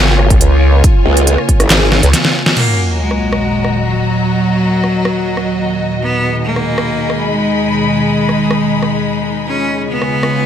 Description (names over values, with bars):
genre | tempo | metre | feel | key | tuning
heavy wobble dubstep | 139 BPM | 4/4 | half-time | Eb minor | A4 = 440 Hz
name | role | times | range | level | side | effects
evolving wavetable pad | sustained chords | 0.0-10.5 s | Eb2 to F4 | -18 LUFS | equal | phaser, built-in reverb, sidechain pumping
vowel-sweep wobble bass | bass | 0.0-2.1 s | Ab1 to Db2 | -10 LUFS | equal | chorus, overdrive
muted symphonic string section | texture | 0.0-10.5 s | Eb4 to Cb6 | -20 LUFS | left 4 dB | sidechain pumping
dubstep drum kit | drums | 0.2-10.3 s | crash cymbal, handclaps, hi-hat, rim click, snare drum | -14 LUFS | equal | none
electronic kick drum | drums | 0.3-1.6 s | none | -10 LUFS | equal | none
growl bass | bass | 1.1-2.0 s | Ab1 to Db2 | -11 LUFS | equal | chorus, overdrive
bright cello | melody | 2.6-10.5 s | Gb3 to Db4 | -17 LUFS | equal | digital delay
sub drop | sound effects | 2.6-4.3 s | none | -19 LUFS | equal | none
room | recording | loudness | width
light reverb, digital ambience | none | -11 LUFS | side -9 dB against mid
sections
0.0-2.6 A section; 2.6-10.5 B section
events
drop 0.0-2.6; break 2.1-2.6; drum fill 2.1-2.6; band accent 2.5; impact 2.6-4.3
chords
0.0 Db; 2.6 Ebm; 6.0 Abm/Eb; 9.5 Db